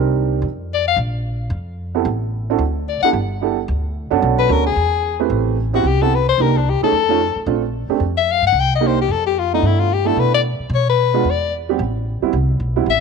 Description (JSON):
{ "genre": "jazz, small-group swing and bop", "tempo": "222 BPM", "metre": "4/4", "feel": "swing 59% on 8ths", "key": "A minor", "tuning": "A4 = 440 Hz", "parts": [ { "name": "warm upright piano", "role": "accompaniment", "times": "0.0-12.9 s", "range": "G3 to B4", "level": "-20 LUFS", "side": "right 13 dB", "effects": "none" }, { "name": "upright bass", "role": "bass", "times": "0.0-13.0 s", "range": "G1 to B2", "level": "-20 LUFS", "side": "equal", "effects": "none" }, { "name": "breathy soprano saxophone", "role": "melody", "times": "0.7-13.0 s", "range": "D4 to G5", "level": "-18 LUFS", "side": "left 11 dB", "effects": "none" } ], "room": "light reverb, studio ambience", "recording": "1960s-style stereo with parts hard left and right", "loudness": "-16 LUFS", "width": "side -5 dB against mid", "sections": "0.0-5.3 A section; 5.3-13.0 B section", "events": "none", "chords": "0.4 Dm/F; 1.0 Bb5; 2.1 Am; 2.6 D5; 3.1 G6; 4.2 Bm7; 4.8 E; 5.3 Am9; 6.4 Cm9; 6.9 Faug7; 7.5 Bbmaj9; 8.5 Cm7; 9.1 F; 9.6 G69; 10.7 Bdim; 11.3 E5; 11.8 Am9", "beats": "0.17 0.44 0.71 | 0.98 1.25 1.52 1.79 | 2.06 2.33 2.60 2.87 | 3.14 3.41 3.68 3.95 | 4.22 4.49 4.76 5.03 | 5.30 5.57 5.84 6.11 | 6.38 6.65 6.92 7.20 | 7.47 7.74 8.01 8.28 | 8.55 8.82 9.09 9.36 | 9.63 9.90 10.17 10.44 | 10.71 10.98 11.25 11.52 | 11.79 12.06 12.34 12.61 | 12.88" }